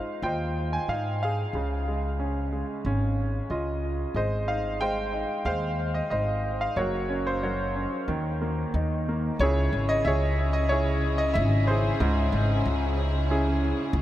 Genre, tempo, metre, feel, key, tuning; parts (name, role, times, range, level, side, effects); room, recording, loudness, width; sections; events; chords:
acoustic folk-pop ballad; 92 BPM; 4/4; straight; A4 = 441 Hz
bright concert grand piano; melody; 0.0-14.0 s; Ab2 to Ab5; -27 LUFS; right 1 dB; analog delay
upright bass; bass; 0.2-14.0 s; Gb1 to Ab2; -27 LUFS; equal
dark chamber string section; sustained chords; 9.4-14.0 s; Db3 to Ab4; -32 LUFS; left 2 dB
moderate huge ambient reverb, RT60 9.0 s; dreamy mix soaked in reverb; -24 LUFS; side -13 dB against mid
0.0-9.4 A section; 9.4-14.0 B section
grand piano fill 3.2-4.2
0.0 Ab6; 1.5 Dbadd9; 4.2 Ab; 6.8 Gb; 8.1 Eb5; 9.4 Dbm